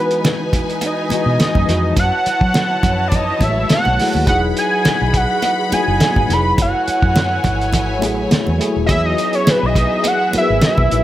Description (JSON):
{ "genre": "lush 1970s-style soul", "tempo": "104 BPM", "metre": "4/4", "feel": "swing 54% on 16ths", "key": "E major", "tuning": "A4 = 440 Hz", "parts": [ { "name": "fat analog lead", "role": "melody", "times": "0.0-11.0 s", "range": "B4 to B5", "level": "-18 LUFS", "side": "right 1 dB", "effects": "chorus, slapback echo" }, { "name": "warm studio string section", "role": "second line", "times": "0.0-11.0 s", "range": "B3 to B5", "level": "-24 LUFS", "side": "left 1 dB", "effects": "none" }, { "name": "tine electric piano", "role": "accompaniment", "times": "0.0-11.0 s", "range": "E3 to B4", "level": "-22 LUFS", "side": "left 2 dB", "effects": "slow stereo tremolo" }, { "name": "dark French horn section", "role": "sustained chords", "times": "0.0-11.0 s", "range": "E3 to D#5", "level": "-29 LUFS", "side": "right 2 dB", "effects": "none" }, { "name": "cloth-damped thuddy drum kit", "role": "drums", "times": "0.1-11.0 s", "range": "hi-hat, kick drum, snare drum", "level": "-18 LUFS", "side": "equal", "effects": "none" }, { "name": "congas", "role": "percussion", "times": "0.2-10.9 s", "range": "none", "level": "-26 LUFS", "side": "right 2 dB", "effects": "none" }, { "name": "vintage muted fingered electric bass", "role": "bass", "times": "1.1-11.0 s", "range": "D#1 to F#3", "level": "-20 LUFS", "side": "equal", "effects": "none" }, { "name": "vibraphone with medium hard mallets", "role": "texture", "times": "4.0-8.2 s", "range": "E4 to F#4", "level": "-30 LUFS", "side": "right 4 dB", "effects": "none" } ], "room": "light reverb, small room ambience", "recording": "none", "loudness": "-13 LUFS", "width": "side -13 dB against mid", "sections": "0.0-11.0 A section", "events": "none", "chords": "0.0 Emaj9; 2.0 F#m9; 4.3 Emaj9; 6.6 F#m9; 8.9 Emaj9" }